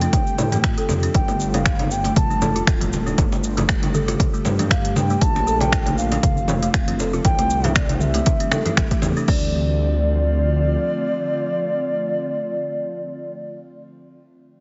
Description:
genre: afro house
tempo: 118 BPM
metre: 4/4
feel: swing 55% on 16ths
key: D minor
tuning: A4 = 440 Hz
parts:
  - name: bass bansuri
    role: melody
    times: 0.0-13.5 s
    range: D5 to A5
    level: -27 LUFS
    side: equal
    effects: delay
  - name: ethereal airy pad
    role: sustained chords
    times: 0.0-13.5 s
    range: D3 to G4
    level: -32 LUFS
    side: equal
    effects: ensemble chorus, built-in reverb, sidechain pumping
  - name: buzzing kalimba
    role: arpeggios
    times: 0.0-9.5 s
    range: A3 to A4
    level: -30 LUFS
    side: equal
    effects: sidechain pumping, delay
  - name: dark detuned saw bass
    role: bass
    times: 0.0-10.8 s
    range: D1 to A2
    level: -26 LUFS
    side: equal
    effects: sidechain pumping
  - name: afro-pop drum kit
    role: drums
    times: 0.0-9.4 s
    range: crash cymbal, finger snaps, hi-hat, shaker, toms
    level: -27 LUFS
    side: equal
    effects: none
  - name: congas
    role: percussion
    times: 0.0-9.1 s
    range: none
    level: -28 LUFS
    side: equal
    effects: none
  - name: electronic kick drum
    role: drums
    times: 0.1-9.4 s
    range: none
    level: -23 LUFS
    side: equal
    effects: overdrive
room: light reverb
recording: heavily compressed radio sound, nothing above 7.8 kHz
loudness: -20 LUFS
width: mono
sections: 0.0-9.3 A section; 9.3-13.4 B section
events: drop 0.0-9.3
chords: 0.0 F69; 1.1 Gsus2; 5.2 Bbmaj9; 7.2 C6; 9.3 Dm7

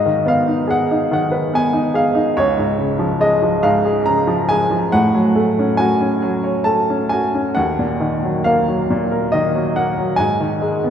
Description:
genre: classical, lyrical solo piano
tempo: 70 BPM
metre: 3/4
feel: rubato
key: unclear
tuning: A4 = 440 Hz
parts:
  - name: bright upright piano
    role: solo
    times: 0.0-10.9 s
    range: C#2 to A#5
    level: -15 LUFS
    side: equal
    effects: none
room: wet cathedral reverb, RT60 4.5 s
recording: recorded in a church or concert hall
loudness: -15 LUFS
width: side -8 dB against mid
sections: 0.0-10.9 A section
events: none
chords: 0.0 G#m; 2.4 C#; 4.9 F#madd9/A; 7.6 D#m; 10.2 G#5

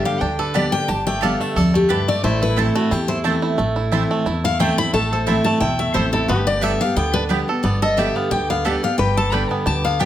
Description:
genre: bluegrass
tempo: 178 BPM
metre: 4/4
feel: swing 54% on 8ths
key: A minor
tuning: A4 = 440 Hz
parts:
  - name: picked steel-string acoustic guitar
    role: melody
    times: 0.0-10.1 s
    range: F#4 to B5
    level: -21 LUFS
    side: left 3 dB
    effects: none
  - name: lap resonator guitar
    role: second line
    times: 0.0-10.1 s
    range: E4 to B4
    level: -28 LUFS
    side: left 3 dB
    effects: none
  - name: picked steel-string acoustic guitar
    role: accompaniment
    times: 0.0-10.1 s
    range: E2 to G4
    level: -22 LUFS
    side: equal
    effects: none
  - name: bluegrass banjo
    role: arpeggios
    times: 0.0-10.1 s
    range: G3 to A4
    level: -25 LUFS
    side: right 4 dB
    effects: none
  - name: upright bass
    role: bass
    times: 0.2-10.1 s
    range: G1 to E2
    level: -25 LUFS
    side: equal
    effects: none
  - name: mandolin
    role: stabs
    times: 0.5-10.1 s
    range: B3 to A5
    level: -27 LUFS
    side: right 8 dB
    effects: none
room: moderate large studio reverb, RT60 0.9 s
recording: none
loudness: -17 LUFS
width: side -11 dB against mid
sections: 0.0-4.9 A section; 4.9-10.1 A section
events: steel-string acoustic guitar solo 0.0-10.1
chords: 0.0 Gadd9; 2.2 Am; 6.3 G

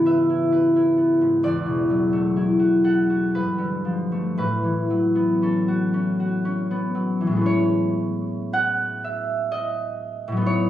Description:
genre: classical, solo harp piece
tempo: 60 BPM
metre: 3/4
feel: uneven beats, rubato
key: A major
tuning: A4 = 445 Hz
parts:
  - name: concert harp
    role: solo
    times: 0.0-10.7 s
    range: C#2 to F#5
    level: -19 LUFS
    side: equal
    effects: none
room: moderate stone room reverb, RT60 1.4 s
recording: recorded on a phone in the room, club reverb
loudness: -19 LUFS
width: side -12 dB against mid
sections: 0.0-7.4 A section; 7.4-10.7 B section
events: none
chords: 0.0 C#m7; 1.4 E9sus4; 3.3 G9; 4.4 A69; 7.4 Amaj9

